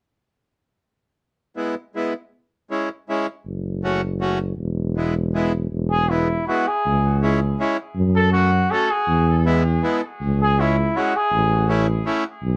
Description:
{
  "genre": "alpine folk, alpine dance band",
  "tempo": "160 BPM",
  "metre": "3/4",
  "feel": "rubato",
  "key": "E major",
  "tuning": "A4 = 440 Hz",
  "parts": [
    { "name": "accordion", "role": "accompaniment", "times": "1.6-12.2 s", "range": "G#3 to F#4", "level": "-25 LUFS", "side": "equal", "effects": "none" },
    { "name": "mellow tuba", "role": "bass", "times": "3.5-12.6 s", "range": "E1 to F#2", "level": "-22 LUFS", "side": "equal", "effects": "none" },
    { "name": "warm trumpet", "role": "melody", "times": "5.9-11.7 s", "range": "E4 to A4", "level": "-24 LUFS", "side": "equal", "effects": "tape echo" }
  ],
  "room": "little or no reverb",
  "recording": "close, detailed microphones",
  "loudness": "-21 LUFS",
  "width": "mono",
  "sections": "1.2-5.7 A section; 5.7-12.6 B section",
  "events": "none",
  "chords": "1.2 E; 2.3 C#m; 3.5 F#m; 4.6 E; 6.9 C#m; 8.0 F#m; 9.1 E; 10.2 C#m; 11.3 A"
}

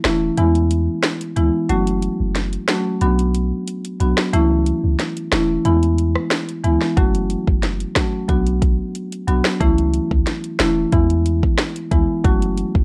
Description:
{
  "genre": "dancehall",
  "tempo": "91 BPM",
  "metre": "4/4",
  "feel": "straight",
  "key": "unclear",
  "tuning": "A4 = 442 Hz",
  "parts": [
    { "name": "marimba with medium mallets", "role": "accompaniment", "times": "0.0-12.8 s", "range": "E3 to F#4", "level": "-22 LUFS", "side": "equal", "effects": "none" },
    { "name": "clean 808-style bass", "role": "bass", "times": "0.0-12.8 s", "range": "E1 to E2", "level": "-22 LUFS", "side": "equal", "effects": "none" },
    { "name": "afro-pop drum kit", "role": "drums", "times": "0.0-12.8 s", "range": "hi-hat, kick drum, rim click, snare drum", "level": "-22 LUFS", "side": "equal", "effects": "none" }
  ],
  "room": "light reverb",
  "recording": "cassette tape",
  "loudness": "-19 LUFS",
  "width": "mono",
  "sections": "0.0-12.8 A section",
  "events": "break 0.0-7.0",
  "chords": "0.4 E; 1.7 F#m; 3.0 Bm; 4.3 A/C#; 5.7 E; 7.0 F#m; 8.3 Bm; 9.6 A/C#; 10.9 E; 12.2 F#m"
}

